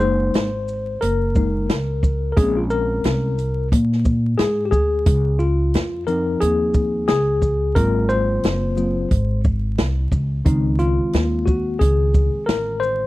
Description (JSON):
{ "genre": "hip hop, jazz-hop", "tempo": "89 BPM", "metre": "4/4", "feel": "swing 60% on 16ths", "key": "Db major", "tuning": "A4 = 439 Hz", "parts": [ { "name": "mellow tine electric piano", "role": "accompaniment", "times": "0.0-13.1 s", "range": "Eb3 to C5", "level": "-21 LUFS", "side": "left 2 dB", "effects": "medium stereo tremolo" }, { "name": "upright bass", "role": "bass", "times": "0.0-13.1 s", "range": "Gb1 to Bb2", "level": "-21 LUFS", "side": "equal", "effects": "none" }, { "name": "open jazz drum kit", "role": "drums", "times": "0.0-13.0 s", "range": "hi-hat, kick drum, shaker, snare drum", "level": "-19 LUFS", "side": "equal", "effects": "none" } ], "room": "small room ambience", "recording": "dry, close 1970s-style studio recording, vinyl crackle", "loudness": "-17 LUFS", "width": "side -17 dB against mid", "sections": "0.0-10.5 A section; 10.5-13.1 B section", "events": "tine electric piano solo 0.0-10.5, 10.5-13.1", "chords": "0.0 Gb6; 2.4 Bbm9; 5.1 Dbmaj7; 7.8 Ab13; 10.5 Dbmaj9" }